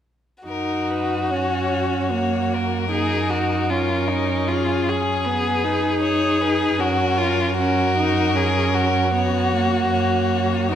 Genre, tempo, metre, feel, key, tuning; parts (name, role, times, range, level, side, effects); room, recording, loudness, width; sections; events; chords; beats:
classical, slow romantic movement for string quartet; 77 BPM; 4/4; rubato; F# major; A4 = 440 Hz
rich violin; second line; 0.4-10.8 s; D#4 to G#4; -22 LUFS; left 2 dB
rich violin; melody; 0.5-10.8 s; G#4 to C#5; -27 LUFS; left 7 dB
warm viola; accompaniment; 0.5-10.8 s; A#3 to D#4; -23 LUFS; right 1 dB
rich cello; bass; 0.5-10.8 s; F#2; -26 LUFS; right 4 dB
wet scoring stage reverb, RT60 1.6 s; -18 LUFS; side -9 dB against mid
0.5-10.8 A section
0.5 F#; 3.7 C#5/F#
| 0.47 1.30 2.11 2.92 | 3.70 4.49 5.26 6.03 | 6.79 7.57 8.35 9.14 | 9.91 10.70